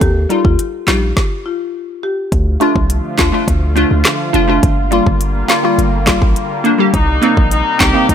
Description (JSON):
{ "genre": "dancehall", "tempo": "104 BPM", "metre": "4/4", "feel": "straight", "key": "D phrygian", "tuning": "A4 = 435 Hz", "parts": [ { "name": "marimba with medium mallets", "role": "melody", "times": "0.0-2.2 s", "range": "F4 to G4", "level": "-22 LUFS", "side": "left 3 dB", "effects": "ping-pong delay" }, { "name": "hard-hitting 808-style bass", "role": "bass", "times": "0.0-8.1 s", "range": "F1 to Eb2", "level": "-16 LUFS", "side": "equal", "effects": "none" }, { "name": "afro-pop drum kit", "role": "drums", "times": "0.0-8.1 s", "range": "handclaps, hi-hat, kick drum, snare drum", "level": "-15 LUFS", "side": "equal", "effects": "none" }, { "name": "glassy wavetable pluck", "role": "accompaniment", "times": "0.3-8.1 s", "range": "G3 to G4", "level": "-15 LUFS", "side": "equal", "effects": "chorus" }, { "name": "warm analog pad", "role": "sustained chords", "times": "2.3-8.1 s", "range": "C3 to F4", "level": "-21 LUFS", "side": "equal", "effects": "lush chorus, sidechain pumping" }, { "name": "clear horn section", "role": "second line", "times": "6.9-8.1 s", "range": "Eb4 to G4", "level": "-16 LUFS", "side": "left 3 dB", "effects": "ping-pong delay" } ], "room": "little or no reverb", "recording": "none", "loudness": "-11 LUFS", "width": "side -8 dB against mid", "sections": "0.0-2.3 A section; 2.3-8.1 B section", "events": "stop 1.2-2.3", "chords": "0.0 Ebadd9; 2.3 Dm; 4.6 Gm7; 6.9 Cm7" }